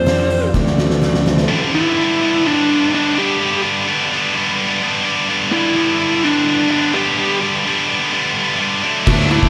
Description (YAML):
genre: quiet-loud alternative rock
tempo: 127 BPM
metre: 4/4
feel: straight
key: G major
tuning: A4 = 441 Hz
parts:
  - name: biting lead guitar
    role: melody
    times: 0.0-9.5 s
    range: D4 to C5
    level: -20 LUFS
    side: equal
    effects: overdrive, tape echo
  - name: picked acoustic archtop guitar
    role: arpeggios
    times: 0.0-1.5 s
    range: D3 to F#4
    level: -26 LUFS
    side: equal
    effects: slapback echo
  - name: fuzz fingered electric bass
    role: bass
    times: 0.0-1.5, 9.1-9.5 s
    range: D2 to F2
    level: -21 LUFS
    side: equal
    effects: overdrive
  - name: oversized low-tuned drum kit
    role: drums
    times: 0.1-1.5, 9.1-9.5 s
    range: crash cymbal, hi-hat, kick drum, snare drum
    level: -20 LUFS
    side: equal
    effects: none
  - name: heavy high-gain guitar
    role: riff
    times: 1.5-9.5 s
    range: G2 to D4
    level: -18 LUFS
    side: equal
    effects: distortion
  - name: overdriven electric guitar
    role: riff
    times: 9.1-9.5 s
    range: D3 to D4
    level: -23 LUFS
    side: equal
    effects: none
room: moderate lush hall reverb, RT60 1.8 s, studio reverb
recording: big arena sound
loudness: -16 LUFS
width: mono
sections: 0.0-1.5 A section; 1.5-9.5 B section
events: drum fill 0.5-1.5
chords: 0.0 Fsus2; 0.5 D7; 1.5 G; 8.8 D